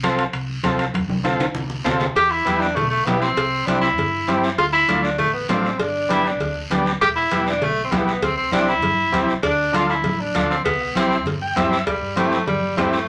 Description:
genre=latin, cumbia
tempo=198 BPM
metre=4/4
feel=straight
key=C major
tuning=A4 = 440 Hz
part: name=overdriven combo organ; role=accompaniment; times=0.0-13.0 s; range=A3 to G5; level=-24 LUFS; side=equal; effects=none
part: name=hollow-body short-scale fingered electric bass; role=bass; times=0.0-13.0 s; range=E1 to G2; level=-32 LUFS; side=equal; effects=none
part: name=bombo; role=percussion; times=0.0-2.2, 7.0-12.9 s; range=none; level=-38 LUFS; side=equal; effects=none
part: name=congas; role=percussion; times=0.0-12.9 s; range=none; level=-29 LUFS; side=equal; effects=none
part: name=guiro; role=percussion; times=0.0-13.1 s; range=none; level=-35 LUFS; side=equal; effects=none
part: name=timbales and cowbell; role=percussion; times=0.0-12.9 s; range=none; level=-30 LUFS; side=equal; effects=none
part: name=warm tenor saxophone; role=second line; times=2.2-13.1 s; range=G3 to G4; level=-23 LUFS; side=equal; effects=none
room=wet club reverb, RT60 0.6 s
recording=none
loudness=-20 LUFS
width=mono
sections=0.0-2.2 A section; 2.2-11.9 B section; 11.9-13.1 C section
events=drum fill 0.9-2.2; tenor saxophone solo 2.2-11.9; transistor combo organ fill 11.3-11.9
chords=0.0 F; 2.2 Em; 3.4 C; 4.6 Dm; 5.8 G; 7.0 Em; 8.2 C; 9.4 Dm; 10.7 C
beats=0.03 0.34 0.64 | 0.94 1.25 1.55 1.85 | 2.16 2.46 2.77 3.07 | 3.37 3.68 3.98 4.28 | 4.59 4.89 5.19 5.50 | 5.80 6.10 6.41 6.71 | 7.01 7.32 7.62 7.92 | 8.22 8.53 8.83 9.13 | 9.44 9.74 10.05 10.35 | 10.65 10.96 11.26 11.56 | 11.87 12.17 12.47 12.78

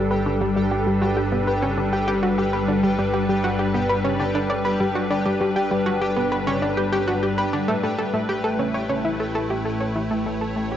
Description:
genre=ambient, sequencer-driven space music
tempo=99 BPM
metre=4/4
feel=straight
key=G lydian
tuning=A4 = 439 Hz
part: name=evolving wavetable pad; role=sustained chords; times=0.0-10.8 s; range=G3 to C#5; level=-23 LUFS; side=left 1 dB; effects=ensemble chorus, built-in reverb, cassette tape
part: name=analog pluck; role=riff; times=0.0-10.8 s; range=G3 to D5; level=-24 LUFS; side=equal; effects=chorus, cassette tape, tape echo
part: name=analog drone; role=bass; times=0.0-10.8 s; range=G1 to A1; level=-30 LUFS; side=equal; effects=chorus, tube saturation
part: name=pulsing gated texture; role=texture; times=0.0-10.8 s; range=G4 to G5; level=-31 LUFS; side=equal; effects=chorus, built-in reverb, cassette tape
room=wet spring reverb, RT60 1.3 s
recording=home recording on cassette, nothing above 7.7 kHz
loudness=-20 LUFS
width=side -10 dB against mid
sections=0.0-10.8 A section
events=fade-out 8.5-10.8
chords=0.0 G; 7.7 A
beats=| 0.41 1.02 1.62 2.23 | 2.84 3.44 4.05 4.65 | 5.26 5.87 6.47 7.08 | 7.68 8.29 8.90 9.50 | 10.11 10.71

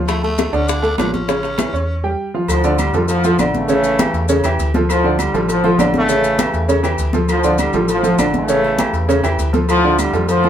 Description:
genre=latin, salsa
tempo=200 BPM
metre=4/4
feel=straight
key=D harmonic minor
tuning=A4 = 440 Hz
part: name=clear concert grand piano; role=accompaniment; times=0.0-10.5 s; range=C#3 to C#6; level=-18 LUFS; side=right 1 dB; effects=none
part: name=metallic FM bass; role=bass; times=0.0-10.5 s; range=A1 to F2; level=-22 LUFS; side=equal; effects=none
part: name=raspy tenor saxophone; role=melody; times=0.1-2.1 s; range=A3 to D4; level=-25 LUFS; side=left 1 dB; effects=none
part: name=bongos and cowbell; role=percussion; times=0.1-10.4 s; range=none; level=-26 LUFS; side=left 7 dB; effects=none
part: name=claves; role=percussion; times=0.1-10.1 s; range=none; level=-33 LUFS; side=left 4 dB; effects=none
part: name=congas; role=percussion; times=0.1-10.5 s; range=none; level=-22 LUFS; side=left 2 dB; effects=none
part: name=maracas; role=percussion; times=0.1-10.4 s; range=none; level=-32 LUFS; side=left 6 dB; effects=none
part: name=timbales and agogo bells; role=percussion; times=0.1-10.5 s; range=none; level=-26 LUFS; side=right 1 dB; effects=none
part: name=brilliant trombone section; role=melody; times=2.5-10.5 s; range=A2 to A3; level=-18 LUFS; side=equal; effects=none
room=wet small room reverb, RT60 0.5 s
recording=band playing live in one room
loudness=-14 LUFS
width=side -9 dB against mid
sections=0.0-2.5 A section; 2.5-10.5 B section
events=break 1.9-2.5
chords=0.1 Dm; 1.3 A7; 2.5 Dm; 3.7 A7; 4.9 Dm; 6.1 A7; 7.3 Dm; 8.5 A7; 9.7 Dm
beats=| 0.08 0.39 0.69 0.99 | 1.29 1.59 1.89 2.19 | 2.49 2.79 3.09 3.39 | 3.69 3.99 4.29 4.59 | 4.89 5.19 5.49 5.79 | 6.09 6.39 6.69 6.99 | 7.29 7.59 7.89 8.19 | 8.49 8.79 9.09 9.38 | 9.68 9.98 10.28

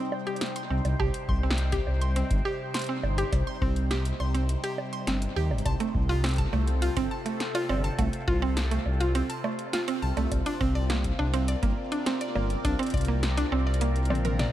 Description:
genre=IDM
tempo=103 BPM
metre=4/4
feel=straight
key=C dorian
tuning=A4 = 440 Hz
part: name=phased analog pad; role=sustained chords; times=0.0-14.5 s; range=C3 to G5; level=-34 LUFS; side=equal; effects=phaser, chorus, vintage 12-bit sampler grit
part: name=mallet-like synth pluck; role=arpeggios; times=0.0-14.5 s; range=A3 to C6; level=-31 LUFS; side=right 2 dB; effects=chorus, analog delay
part: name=electro analog drum machine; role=drums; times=0.1-14.5 s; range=bongos, hi-hat, snare drum, toms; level=-35 LUFS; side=equal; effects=studio reverb, tape echo
part: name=dark detuned saw bass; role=bass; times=0.7-14.5 s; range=G1 to Eb2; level=-27 LUFS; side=equal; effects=none
part: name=electronic kick drum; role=drums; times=1.0-13.1 s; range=none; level=-30 LUFS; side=equal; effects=studio reverb
room=light reverb, digital ambience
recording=echo-heavy mix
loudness=-25 LUFS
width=side -13 dB against mid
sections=0.0-14.5 A section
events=drum fill 14.1-14.5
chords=0.0 Cm; 5.7 F; 10.3 Bbadd9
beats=0.41 | 1.00 1.58 2.16 2.74 | 3.33 3.91 4.49 5.07 | 5.66 6.24 6.82 7.40 | 7.99 8.57 9.15 9.73 | 10.32 10.90 11.48 12.06 | 12.65 13.23 13.81 14.39

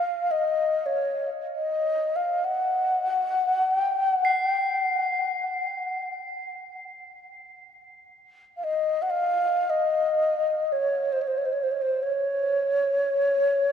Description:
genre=world meditative, free-time meditation music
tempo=free time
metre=none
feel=none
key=unclear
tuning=A4 = 440 Hz
part: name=breathy low xiao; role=melody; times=0.0-13.7 s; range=C5 to Gb5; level=-23 LUFS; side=left 1 dB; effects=tape echo
part: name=crotales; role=texture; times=0.0-13.4 s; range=Bb6 to Eb7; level=-32 LUFS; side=left 1 dB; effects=none
room=wet huge ambient reverb, RT60 6.0 s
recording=none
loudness=-22 LUFS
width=side -8 dB against mid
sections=0.0-13.7 A section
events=none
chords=none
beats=free time

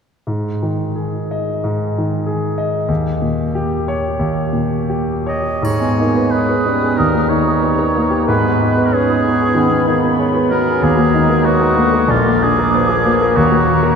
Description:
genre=classical, romantic movement for piano and orchestra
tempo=76-98 BPM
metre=4/4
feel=rubato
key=G# minor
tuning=A4 = 444 Hz
part: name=clear concert grand piano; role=melody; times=0.3-14.0 s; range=A#1 to D#5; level=-15 LUFS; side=left 1 dB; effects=none
part: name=warm oboe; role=second line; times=5.3-14.0 s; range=E#4 to D#5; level=-19 LUFS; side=right 1 dB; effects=none
part: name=mellow bassoon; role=accompaniment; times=5.6-14.0 s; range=D3 to B3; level=-22 LUFS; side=right 1 dB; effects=none
part: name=triangle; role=percussion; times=5.6-6.9 s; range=none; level=-42 LUFS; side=left 4 dB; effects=none
part: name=bright clarinet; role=second line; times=5.7-14.0 s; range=G#3 to D#4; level=-24 LUFS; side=right 1 dB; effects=none
part: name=flute section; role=second line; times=5.7-14.0 s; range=G#5 to D#6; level=-23 LUFS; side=equal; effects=none
room=wet cathedral reverb, RT60 4.5 s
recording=none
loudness=-13 LUFS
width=side -6 dB against mid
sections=0.3-5.7 A section; 5.7-14.0 B section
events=none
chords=0.3 G#5; 2.9 D#7; 5.7 G#m; 7.0 D#7; 8.3 G#m; 10.8 D#m; 12.1 A#7; 13.4 D#m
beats=| 0.29 0.97 1.64 2.27 | 2.89 3.55 4.21 4.90 | 5.65 6.33 6.99 7.63 | 8.29 8.94 9.57 10.21 | 10.84 11.47 12.11 12.75 | 13.38

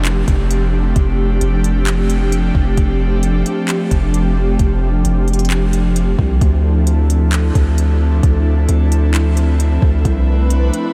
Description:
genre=hip hop, atmospheric cloud-rap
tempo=132 BPM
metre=4/4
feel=half-time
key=F major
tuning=A4 = 440 Hz
part: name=airy breathy pad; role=sustained chords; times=0.0-10.9 s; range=F3 to B4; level=-21 LUFS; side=equal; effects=chorus
part: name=long sustained 808-style bass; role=bass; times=0.0-10.7 s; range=F1 to D2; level=-17 LUFS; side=equal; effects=none
part: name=downlifter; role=sound effects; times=0.0-2.8 s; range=none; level=-38 LUFS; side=equal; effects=none
part: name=smooth R&B drum kit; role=drums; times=0.1-10.8 s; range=handclaps, hi-hat, kick drum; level=-22 LUFS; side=equal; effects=none
room=light reverb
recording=none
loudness=-15 LUFS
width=mono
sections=0.0-10.9 A section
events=none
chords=0.0 F69; 6.4 Dm9; 10.1 Cmaj13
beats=0.05 0.50 | 0.96 1.41 1.87 2.32 | 2.78 3.23 3.69 4.14 | 4.59 5.05 5.50 5.96 | 6.41 6.87 7.32 7.78 | 8.23 8.69 9.14 9.60 | 10.05 10.50

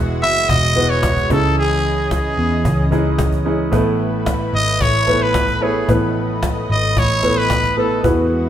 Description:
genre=piano-driven pop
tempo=111 BPM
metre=4/4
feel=straight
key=unclear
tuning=A4 = 440 Hz
part: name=warm grand piano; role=accompaniment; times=0.0-8.5 s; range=A2 to C#5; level=-20 LUFS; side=right 1 dB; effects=none
part: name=lush unison pad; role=sustained chords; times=0.0-8.5 s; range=E3 to D#5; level=-25 LUFS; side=equal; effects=chorus
part: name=vintage muted picked electric bass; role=bass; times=0.0-8.5 s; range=E1 to E2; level=-20 LUFS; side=equal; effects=none
part: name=growling trumpet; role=melody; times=0.2-8.0 s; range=G#4 to E5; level=-18 LUFS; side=equal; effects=none
part: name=cajon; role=drums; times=0.2-8.4 s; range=none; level=-22 LUFS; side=equal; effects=none
room=wet stone room reverb, RT60 1.0 s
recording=band playing live in one room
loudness=-14 LUFS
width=side -10 dB against mid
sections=0.0-8.5 A section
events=none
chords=0.0 Eadd9; 1.3 C#madd9; 3.7 Asus2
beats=0.49 1.03 | 1.57 2.11 2.65 3.19 | 3.73 4.27 4.81 5.34 | 5.88 6.42 6.96 7.50 | 8.04

